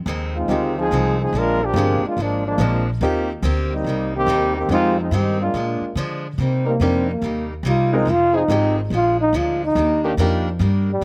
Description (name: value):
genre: jazz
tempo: 142 BPM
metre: 4/4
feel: swing 65% on 8ths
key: C minor from 6.4 s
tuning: A4 = 437 Hz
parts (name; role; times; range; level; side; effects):
- upright bass; bass; 0.0-11.0 s; F1 to D3; -24 LUFS; equal; none
- picked acoustic archtop guitar; accompaniment; 0.1-10.9 s; F2 to G4; -31 LUFS; equal; slapback echo
- warm trombone section; second line; 0.4-5.9 s; Eb3 to Bb4; -23 LUFS; equal; slapback echo
- warm baby grand piano; accompaniment; 0.5-10.4 s; Ab3 to Bb4; -26 LUFS; equal; slapback echo
- breathy trombone; melody; 6.4-11.0 s; G3 to F4; -21 LUFS; equal; slapback echo
- warm trombone section; sustained chords; 6.6-10.1 s; Eb3 to Bb4; -24 LUFS; equal; none
room: little or no reverb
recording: recorded outdoors, with no room sound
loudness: -20 LUFS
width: mono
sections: 0.0-6.4 A section; 6.4-11.0 B section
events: trombone section solo 0.0-6.4; trombone solo 6.4-11.0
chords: 0.0 Fm7; 1.3 Bb7; 3.0 Eb6; 3.9 Cm7; 4.7 Fm7; 5.5 Bb7; 6.4 Cm7; 8.1 Fm7; 8.9 Bb7; 9.8 Ebmaj7